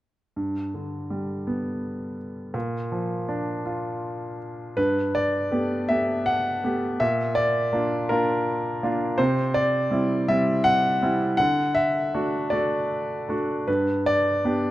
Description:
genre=classical, lyrical solo piano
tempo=54 BPM (dotted quarters)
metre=6/8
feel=rubato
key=unclear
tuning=A4 = 440 Hz
part: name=clear concert grand piano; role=solo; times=0.4-14.7 s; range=G2 to F#5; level=-22 LUFS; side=equal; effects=none
room=moderate recital hall reverb, RT60 1.7 s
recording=dark, warm production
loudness=-22 LUFS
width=side -15 dB against mid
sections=0.4-4.8 A section; 4.8-14.7 B section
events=none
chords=0.4 G; 2.5 Bb; 4.8 Gadd9; 7.0 Bb; 9.2 C; 11.4 D; 13.7 G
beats=| 0.36 1.47 | 2.55 3.65 | 4.78 5.90 | 7.00 8.10 | 9.19 10.28 | 11.39 12.53 | 13.68

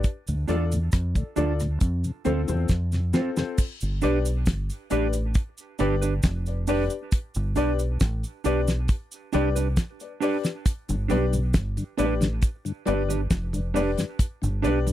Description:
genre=roots reggae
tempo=68 BPM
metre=4/4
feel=straight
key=G mixolydian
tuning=A4 = 440 Hz
part: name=clear upright piano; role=stabs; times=0.0-14.9 s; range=C4 to D5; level=-28 LUFS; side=left 8 dB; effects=none
part: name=deep dub fingered electric bass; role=bass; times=0.0-14.9 s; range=F1 to F2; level=-26 LUFS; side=equal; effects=tube saturation
part: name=damped 70s drum kit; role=drums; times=0.0-14.9 s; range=crash cymbal, hi-hat, kick drum, rim click, snare drum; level=-23 LUFS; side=equal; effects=none
part: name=cabasa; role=percussion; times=0.0-14.9 s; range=none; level=-40 LUFS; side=right 4 dB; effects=none
part: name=mellow tonewheel organ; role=accompaniment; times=0.3-3.4, 10.9-14.9 s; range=D2 to D4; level=-28 LUFS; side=left 2 dB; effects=slow rotary speaker
part: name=mellow electric guitar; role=accompaniment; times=0.5-14.8 s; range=C4 to B4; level=-30 LUFS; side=right 10 dB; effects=dub echo
room=little or no reverb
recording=dry, close 1970s-style studio recording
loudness=-23 LUFS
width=side -13 dB against mid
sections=0.0-3.6 A section; 3.6-14.9 B section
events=drum fill 2.7-3.6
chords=0.0 Dm; 1.8 F; 3.6 G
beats=| 0.04 0.93 1.81 2.70 | 3.58 4.47 5.35 6.24 | 7.12 8.01 8.89 9.77 | 10.66 11.54 12.42 13.31 | 14.19

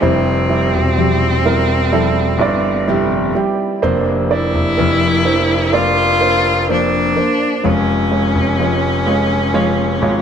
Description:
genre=pop ballad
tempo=63 BPM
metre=4/4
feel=straight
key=unclear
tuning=A4 = 440 Hz
part: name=bright cello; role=melody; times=0.0-10.2 s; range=C4 to F4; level=-17 LUFS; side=equal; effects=none
part: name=warm upright piano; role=accompaniment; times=0.0-10.2 s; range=G3 to D5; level=-18 LUFS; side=right 5 dB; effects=none
part: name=fingerpicked steel-string acoustic guitar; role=arpeggios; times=0.0-10.2 s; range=F2 to G4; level=-22 LUFS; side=left 9 dB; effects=tape echo
part: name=clear concert grand piano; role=bass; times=0.0-10.2 s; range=E1 to Ab1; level=-19 LUFS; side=left 1 dB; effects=none
room=light reverb, small room ambience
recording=none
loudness=-13 LUFS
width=side -8 dB against mid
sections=0.0-10.2 A section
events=none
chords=0.0 C; 3.8 Bbadd9/F; 7.6 Db/F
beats=| 0.03 0.98 1.93 2.88 | 3.83 4.79 5.74 6.69 | 7.64 8.60 9.55

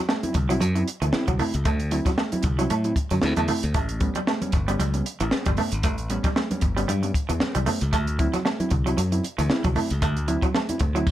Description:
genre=funk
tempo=115 BPM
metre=4/4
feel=swing 56% on 16ths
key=unclear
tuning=A4 = 439 Hz
part: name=semi-hollow electric guitar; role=riff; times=0.0-11.0 s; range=E3 to A3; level=-29 LUFS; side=right 3 dB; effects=none
part: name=compact cocktail drum kit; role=drums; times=0.1-11.1 s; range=crash cymbal, hi-hat, kick drum, snare drum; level=-26 LUFS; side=equal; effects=none
part: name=congas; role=percussion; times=0.1-10.9 s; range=none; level=-33 LUFS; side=right 2 dB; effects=none
part: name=mellow reed electric piano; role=stabs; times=0.2-11.1 s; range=A2 to E4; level=-29 LUFS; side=equal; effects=fast tremolo
part: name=modern bright fingered electric bass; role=bass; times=0.4-11.0 s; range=G1 to A2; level=-25 LUFS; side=left 1 dB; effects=none
room=light reverb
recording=none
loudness=-21 LUFS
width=side -13 dB against mid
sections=0.0-11.1 A section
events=none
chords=0.0 D9; 3.7 A9; 7.9 D9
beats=0.09 0.61 1.13 | 1.66 2.18 2.70 3.22 | 3.75 4.27 4.79 5.32 | 5.84 6.36 6.88 7.41 | 7.93 8.45 8.98 9.50 | 10.02 10.55 11.07

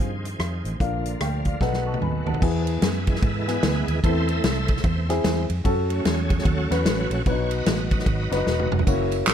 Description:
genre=uptempo gospel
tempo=149 BPM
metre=4/4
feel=swing 62% on 8ths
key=E major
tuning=A4 = 440 Hz
part: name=dark upright piano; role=accompaniment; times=0.0-9.3 s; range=Bb2 to Db6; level=-27 LUFS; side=left 3 dB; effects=none
part: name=bright tonewheel organ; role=sustained chords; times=0.0-9.3 s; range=D3 to E5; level=-30 LUFS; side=right 2 dB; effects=slow rotary speaker, chorus vibrato
part: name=vintage muted fingered electric bass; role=bass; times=0.0-9.3 s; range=E1 to G#2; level=-26 LUFS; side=equal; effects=none
part: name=natural country drum kit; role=drums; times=0.2-9.3 s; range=crash cymbal, hi-hat, kick drum, ride cymbal, rim click, snare drum, toms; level=-25 LUFS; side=equal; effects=none
part: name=tambourine and handclaps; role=percussion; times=8.9-9.3 s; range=none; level=-23 LUFS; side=right 4 dB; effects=none
room=light reverb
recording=dark, warm production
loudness=-20 LUFS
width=side -9 dB against mid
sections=0.0-2.4 A section; 2.4-9.3 B section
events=drum fill 1.6-2.4, 8.5-8.9; tonewheel organ solo 2.4-9.3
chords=0.0 Fm; 0.8 Bb; 1.6 B7; 2.4 E; 4.0 Am; 5.7 F#m; 7.3 B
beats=0.40 | 0.80 1.21 1.61 2.02 | 2.42 2.83 3.23 3.63 | 4.04 4.44 4.84 5.25 | 5.65 6.05 6.46 6.86 | 7.26 7.66 8.07 8.47 | 8.87 9.27

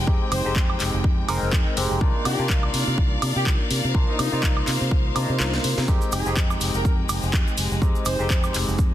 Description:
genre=filtered disco house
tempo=124 BPM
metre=4/4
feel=swing 56% on 16ths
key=F dorian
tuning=A4 = 440 Hz
part: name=barky tine electric piano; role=accompaniment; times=0.0-8.9 s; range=Ab3 to D5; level=-28 LUFS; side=equal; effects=medium stereo tremolo, phaser, sidechain pumping
part: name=clear chamber violin section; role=sustained chords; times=0.0-8.9 s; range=Ab3 to G5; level=-31 LUFS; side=left 3 dB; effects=sidechain pumping
part: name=fingered electric bass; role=bass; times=0.0-8.9 s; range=F1 to C3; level=-26 LUFS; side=equal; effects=sidechain pumping
part: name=electronic kick drum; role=drums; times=0.1-8.9 s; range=none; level=-21 LUFS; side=equal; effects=none
part: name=mellow horn section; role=melody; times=0.3-8.5 s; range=Eb4 to C5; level=-31 LUFS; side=equal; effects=sidechain pumping, ping-pong delay
part: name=house drum kit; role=drums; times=0.3-8.7 s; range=handclaps, hi-hat, snare drum, woodblock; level=-28 LUFS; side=equal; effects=none
part: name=egg shaker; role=percussion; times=5.9-8.9 s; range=none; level=-36 LUFS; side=right 6 dB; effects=sidechain pumping on perc
room=light reverb, small room ambience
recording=dense, heavily limited modern master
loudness=-20 LUFS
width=side -12 dB against mid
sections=0.0-8.9 A section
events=kick drops out 5.4-5.9; drum fill 5.4-5.9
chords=0.0 Fm9; 2.0 Cm11; 5.9 Fm9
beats=| 0.08 0.56 1.04 1.53 | 2.01 2.50 2.98 3.46 | 3.95 4.43 4.92 5.40 | 5.88 6.37 6.85 7.33 | 7.82 8.30 8.79

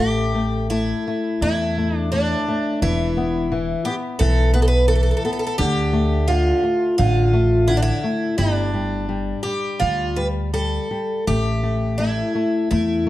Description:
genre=fado-style ballad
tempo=85 BPM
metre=4/4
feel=rubato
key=unclear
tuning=A4 = 444 Hz
part: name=picked twelve-string acoustic guitar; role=melody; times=0.0-13.1 s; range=D4 to B4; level=-22 LUFS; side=equal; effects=none
part: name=flamenco guitar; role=accompaniment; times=0.0-13.1 s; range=D3 to B3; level=-24 LUFS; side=left 3 dB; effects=none
part: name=upright bass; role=bass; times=0.0-13.1 s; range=E1 to E2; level=-20 LUFS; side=right 1 dB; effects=none
room=light reverb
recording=dark, warm production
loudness=-18 LUFS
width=side -15 dB against mid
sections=0.0-13.1 A section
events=none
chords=0.0 A5; 2.8 E5; 5.6 Dm; 8.4 G5; 11.3 A5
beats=0.70 1.42 2.13 | 2.83 3.52 4.20 4.90 | 5.59 6.29 7.00 7.70 | 8.39 9.09 9.81 10.55 | 11.28 12.00 12.71

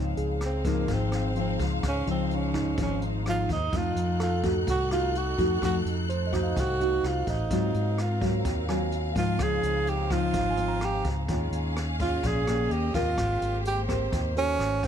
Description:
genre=bossa nova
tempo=127 BPM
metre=4/4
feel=straight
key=unclear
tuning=A4 = 443 Hz
part: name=nylon-string guitar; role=accompaniment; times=0.0-14.9 s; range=Ab2 to Bb4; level=-31 LUFS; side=left 2 dB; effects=none
part: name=warm symphonic string section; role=sustained chords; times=0.0-14.9 s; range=A3 to Gb6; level=-37 LUFS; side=equal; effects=none
part: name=fingered electric bass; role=bass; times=0.0-14.9 s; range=Ab1 to Ab2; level=-30 LUFS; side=equal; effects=none
part: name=bright tine electric piano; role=accompaniment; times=0.2-14.8 s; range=Eb4 to Bb5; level=-37 LUFS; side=right 5 dB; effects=none
part: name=jazz brush drum kit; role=drums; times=0.2-14.9 s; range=hi-hat, kick drum, rim click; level=-34 LUFS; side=equal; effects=none
part: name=breathy tenor saxophone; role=melody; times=0.4-14.9 s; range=Bb3 to Ab4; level=-29 LUFS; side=right 2 dB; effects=none
room=little or no reverb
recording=close, detailed microphones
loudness=-24 LUFS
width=side -8 dB against mid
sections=0.0-14.9 A section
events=tenor saxophone solo 0.0-14.9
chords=0.0 Dbmaj9; 3.7 F7b9; 7.5 Ab13; 9.4 Dbmaj9; 11.3 Eb9sus4; 12.7 Eb7; 13.2 Abmaj9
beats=0.41 0.89 1.36 | 1.84 2.31 2.78 3.26 | 3.73 4.20 4.67 5.15 | 5.62 6.09 6.57 7.04 | 7.51 7.98 8.45 8.93 | 9.40 9.87 10.34 10.81 | 11.29 11.76 12.23 12.70 | 13.18 13.65 14.12 14.59

